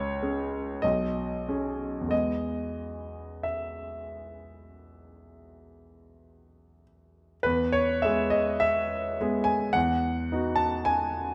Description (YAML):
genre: classical, romantic nocturne for solo piano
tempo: 44-54 BPM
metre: 4/4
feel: rubato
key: E major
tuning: A4 = 440 Hz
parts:
  - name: clear grand piano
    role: solo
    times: 0.0-11.3 s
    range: B1 to A5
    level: -28 LUFS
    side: equal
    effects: none
room: wet recital hall reverb, RT60 1.6 s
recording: none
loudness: -28 LUFS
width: mono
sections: 0.0-7.4 A section; 7.4-11.3 A section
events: none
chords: 0.0 C#5; 0.8 B69; 2.1 E; 9.7 B/E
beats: 0.83 | 2.12 3.44 4.81 6.16 | 7.45 8.63 9.75 10.87